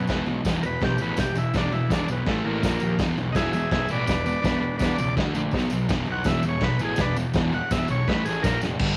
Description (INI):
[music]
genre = garage rock duo or trio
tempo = 165 BPM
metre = 4/4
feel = straight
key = E mixolydian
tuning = A4 = 440 Hz
[part]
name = combo organ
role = melody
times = 0.0-8.6 s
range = A3 to F#5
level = -31 LUFS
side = equal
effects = cassette tape
[part]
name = fuzz guitar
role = riff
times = 0.0-9.0 s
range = E2 to D4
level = -28 LUFS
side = equal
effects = distortion, cassette tape
[part]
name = fuzz picked electric bass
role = bass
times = 0.0-9.0 s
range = E1 to D#2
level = -33 LUFS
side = equal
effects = overdrive
[part]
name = vintage drum kit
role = drums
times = 0.1-8.9 s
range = crash cymbal, kick drum, snare drum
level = -29 LUFS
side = equal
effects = cassette tape
[part]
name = tambourine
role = percussion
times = 0.1-8.7 s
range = none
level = -48 LUFS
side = equal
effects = none
[sound]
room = light reverb, studio reverb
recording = home recording on cassette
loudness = -24 LUFS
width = mono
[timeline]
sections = 0.0-8.8 A section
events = transistor combo organ solo 0.0-8.8; drum fill 8.6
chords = 0.1 E5; 2.3 A5; 2.6 A#5; 3.0 E; 5.2 D5; 5.5 B5; 5.9 E5; 8.1 A5; 8.4 A#5